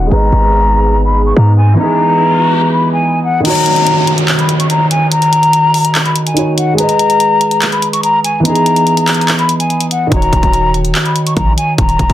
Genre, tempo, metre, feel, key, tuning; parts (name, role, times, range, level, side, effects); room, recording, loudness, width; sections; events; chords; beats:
hip hop, trap; 144 BPM; 4/4; half-time; Eb phrygian; A4 = 438 Hz
breathy concert flute; melody; 0.0-12.1 s; Gb5 to Db6; -13 LUFS; left 2 dB; low-pass filter, tape echo
dark grand piano; accompaniment; 0.0-12.1 s; Eb3 to Eb5; -15 LUFS; right 1 dB; low-pass filter
mellow French horn section; sustained chords; 0.0-3.4 s; E3 to Ab4; -20 LUFS; equal; low-pass filter
hard-hitting 808-style bass; bass; 0.0-1.8, 10.1-12.1 s; Eb1 to Ab2; -12 LUFS; equal
downlifter and riser; sound effects; 1.1-6.8 s; -22 LUFS; equal
trap drum kit; drums; 3.4-12.1 s; crash cymbal, handclaps, hi-hat, kick drum; -16 LUFS; equal
digital ambience; dense, heavily limited modern master; -9 LUFS; side -12 dB against mid
0.0-3.5 A section; 3.5-12.1 B section
filter sweep 0.0-3.5; riser 1.1-3.5; kick muted 3.5-10.1
0.1 Abm; 1.8 Emaj7; 3.5 Ebm7; 6.8 Abm; 10.1 Ebm7
| 0.12 0.53 0.95 1.37 | 1.78 2.20 2.62 3.03 | 3.45 3.87 4.28 4.70 | 5.12 5.53 5.95 6.37 | 6.78 7.20 7.62 8.03 | 8.45 8.87 9.28 9.70 | 10.12 10.53 10.95 11.37 | 11.78